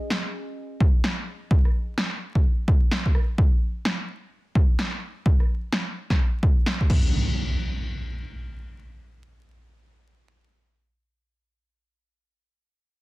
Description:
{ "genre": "UK garage, two-step garage", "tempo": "128 BPM", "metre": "4/4", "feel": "swing 61% on 16ths", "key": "none", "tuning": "none", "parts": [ { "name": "punchy analog drum machine", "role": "drums", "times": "0.1-7.0 s", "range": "crash cymbal, rim click, snare drum", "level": "-28 LUFS", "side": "equal", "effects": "none" }, { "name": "electronic kick drum", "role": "drums", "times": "0.8-7.0 s", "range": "none", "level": "-20 LUFS", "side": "equal", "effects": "none" }, { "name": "impact", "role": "sound effects", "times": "6.9-10.9 s", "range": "none", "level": "-28 LUFS", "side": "equal", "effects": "none" } ], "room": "little or no reverb", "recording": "dense, heavily limited modern master, vinyl crackle", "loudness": "-21 LUFS", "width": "side -20 dB against mid", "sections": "0.0-7.1 A section; 7.1-10.9 B section", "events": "none", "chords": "none" }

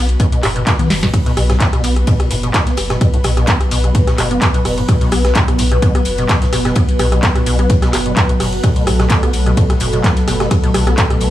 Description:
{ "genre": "acid house", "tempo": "128 BPM", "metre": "4/4", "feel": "swing 54% on 16ths", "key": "unclear", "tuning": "A4 = 438 Hz", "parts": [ { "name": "deep acid bass", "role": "riff", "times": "0.0-11.3 s", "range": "A2 to B3", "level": "-21 LUFS", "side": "equal", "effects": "tube saturation, ensemble chorus, analog delay" }, { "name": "warm sub bass", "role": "bass", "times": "0.0-11.3 s", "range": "F#1 to B1", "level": "-17 LUFS", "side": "equal", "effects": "tube saturation, sidechain pumping" }, { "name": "granular cloud pad", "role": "texture", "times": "0.0-11.3 s", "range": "B3 to B5", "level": "-26 LUFS", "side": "equal", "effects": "built-in reverb, sidechain pumping" }, { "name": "booming analog drum machine", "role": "drums", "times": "0.1-11.3 s", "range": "handclaps, hi-hat, rim click, snare drum, toms", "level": "-19 LUFS", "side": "equal", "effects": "none" }, { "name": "electronic kick drum", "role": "drums", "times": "0.2-11.1 s", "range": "none", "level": "-14 LUFS", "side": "equal", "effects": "none" }, { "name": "modern studio drum kit", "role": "drums", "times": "0.2-11.3 s", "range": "hi-hat, ride cymbal, snare drum", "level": "-29 LUFS", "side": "left 2 dB", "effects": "sidechain pumping on cymbals, high-pass filter on cymbals, sidechain pumping on hats, high-pass filter on hats, high-pass filter on snare, high-pass filter on room" }, { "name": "warm analog pad", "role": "sustained chords", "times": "1.1-11.3 s", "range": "F#3 to B4", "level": "-21 LUFS", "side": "equal", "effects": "chorus, sidechain pumping" } ], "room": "small room reverb", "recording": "dry, gritty hardware recording, small room ambience", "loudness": "-12 LUFS", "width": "side -13 dB against mid", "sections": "0.0-11.3 A section", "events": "fade-in on ambient pad 0.0-11.3; drum fill 0.8-1.1", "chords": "0.0 B5" }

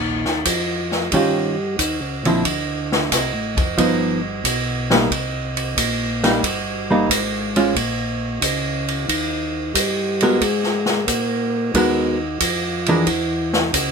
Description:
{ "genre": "soul jazz organ trio", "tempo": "90 BPM", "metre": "4/4", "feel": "swing 69% on 8ths", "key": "Eb mixolydian", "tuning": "A4 = 440 Hz", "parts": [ { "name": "tonewheel organ", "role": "bass", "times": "0.0-13.9 s", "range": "F1 to Bb2", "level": "-24 LUFS", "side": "left 1 dB", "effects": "slow rotary speaker" }, { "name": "swinging big-band drum kit", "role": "drums", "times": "0.3-13.9 s", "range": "hi-hat, kick drum, ride cymbal, snare drum", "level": "-21 LUFS", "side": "right 1 dB", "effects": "none" }, { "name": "hollow-body jazz guitar", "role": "accompaniment", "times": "1.1-13.1 s", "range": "D3 to Bb4", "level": "-17 LUFS", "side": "right 1 dB", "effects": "none" } ], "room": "light reverb", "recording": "minimal, uncompressed stereo recording", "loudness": "-17 LUFS", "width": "side -5 dB against mid", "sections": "0.0-13.9 A section", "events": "none", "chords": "0.0 Eb9; 2.5 Dm7; 3.8 G7b13; 5.1 Cm7; 7.8 Bbm; 9.1 Eb; 10.4 Abm9; 13.1 N.C." }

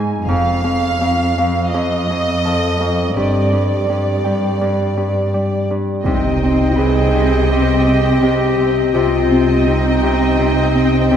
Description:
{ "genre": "cinematic, suspense film score", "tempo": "83 BPM", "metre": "4/4", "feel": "straight", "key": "C harmonic minor from 6.1 s", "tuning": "A4 = 440 Hz", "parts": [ { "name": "Celtic harp", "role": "riff", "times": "0.0-11.2 s", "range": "F2 to C4", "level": "-19 LUFS", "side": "equal", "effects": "none" }, { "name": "rich studio cello section", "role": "bass", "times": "0.0-11.2 s", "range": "F2 to C3", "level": "-20 LUFS", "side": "equal", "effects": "none" }, { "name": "concert harp", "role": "texture", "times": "0.0-10.7 s", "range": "A4 to Eb6", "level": "-31 LUFS", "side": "left 2 dB", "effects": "none" }, { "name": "rich studio violin section", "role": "melody", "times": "0.3-11.2 s", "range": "D5 to G5", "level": "-22 LUFS", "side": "right 2 dB", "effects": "none" }, { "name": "rich studio double bass section", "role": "bass", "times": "0.3-11.2 s", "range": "F1 to C2", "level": "-20 LUFS", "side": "equal", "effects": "none" }, { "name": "mellow clarinet", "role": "second line", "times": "6.0-11.2 s", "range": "Eb4 to Ab4", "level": "-19 LUFS", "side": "left 2 dB", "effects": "none" }, { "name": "rich studio violin section", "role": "second line", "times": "6.0-11.2 s", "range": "Eb5", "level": "-22 LUFS", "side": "equal", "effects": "none" }, { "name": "impact", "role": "sound effects", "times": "6.0-8.9 s", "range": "none", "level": "-27 LUFS", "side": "right 1 dB", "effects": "none" }, { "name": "clear studio viola section", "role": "accompaniment", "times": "6.1-11.2 s", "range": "C4", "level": "-21 LUFS", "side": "equal", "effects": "none" } ], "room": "wet cathedral reverb, RT60 5.0 s", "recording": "in a vast, echoing space", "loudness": "-13 LUFS", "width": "side -8 dB against mid", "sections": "0.0-6.1 A section; 6.1-11.2 B section", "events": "impact 6.1-8.9", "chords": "0.3 F; 3.2 G5; 6.1 Cm" }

